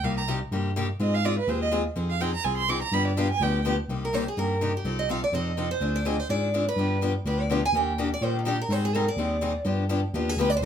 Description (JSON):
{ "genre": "acoustic string swing (jazz manouche)", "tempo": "249 BPM", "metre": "4/4", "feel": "swing 56% on 8ths", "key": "C minor", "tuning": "A4 = 435 Hz", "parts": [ { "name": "warm violin", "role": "second line", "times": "0.0-3.7 s", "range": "B4 to D6", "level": "-28 LUFS", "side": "right 6 dB", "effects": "none" }, { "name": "picked steel-string acoustic guitar", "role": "accompaniment", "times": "0.0-10.7 s", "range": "C3 to A4", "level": "-29 LUFS", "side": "left 4 dB", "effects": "none" }, { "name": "bright tine electric piano", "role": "bass", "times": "0.0-10.7 s", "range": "C2 to Bb2", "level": "-28 LUFS", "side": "equal", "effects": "none" }, { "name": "picked steel-string acoustic guitar", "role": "melody", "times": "4.0-10.6 s", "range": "Eb4 to Ab5", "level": "-28 LUFS", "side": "right 2 dB", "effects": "none" } ], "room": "moderate studio reverb, RT60 0.5 s", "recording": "minimal, uncompressed stereo recording", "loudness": "-24 LUFS", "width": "side -8 dB against mid", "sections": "0.0-3.9 A section; 3.9-10.7 A section", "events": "violin solo 0.0-3.9; steel-string acoustic guitar solo 3.9-10.7", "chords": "0.0 Cm7; 1.0 Ab6; 2.0 Fm7; 2.9 G7; 3.9 Cm7; 4.8 F7/C; 5.8 Dm7b5; 6.8 G7; 7.7 Ebmaj7; 8.7 Abmaj7; 9.7 G7" }